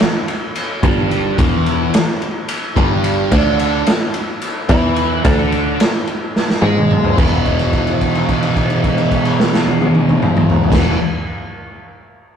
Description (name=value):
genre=psychedelic rock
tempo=217 BPM (eighths)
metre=7/8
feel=straight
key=unclear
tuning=A4 = 438 Hz
part: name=raw garage drum kit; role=drums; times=0.0-10.9 s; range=crash cymbal, kick drum, ride cymbal, snare drum, toms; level=-16 LUFS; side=equal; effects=none
part: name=fuzz guitar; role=riff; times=0.8-11.0 s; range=E2 to G#4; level=-16 LUFS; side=equal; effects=distortion, phaser
part: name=picked electric bass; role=bass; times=0.8-10.9 s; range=E1 to G#2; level=-18 LUFS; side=equal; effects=none
room=light reverb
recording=rough rehearsal-room recording, tube saturation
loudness=-13 LUFS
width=side -8 dB against mid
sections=0.0-7.2 A section; 7.2-11.0 B section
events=drum fill 6.3-7.2; held note 7.2-10.7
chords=0.0 Em; 3.3 E7/D; 7.2 E5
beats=0.27 0.55 0.82 1.10 | 1.38 1.65 1.93 2.20 2.48 2.75 3.03 | 3.31 3.58 3.86 4.14 4.41 4.69 4.97 | 5.24 5.52 5.79 6.07 6.35 6.62 6.90 | 7.18 7.45 7.73 8.00 8.28 8.56 8.83 | 9.11 9.38 9.66 9.94 10.21 10.49 10.77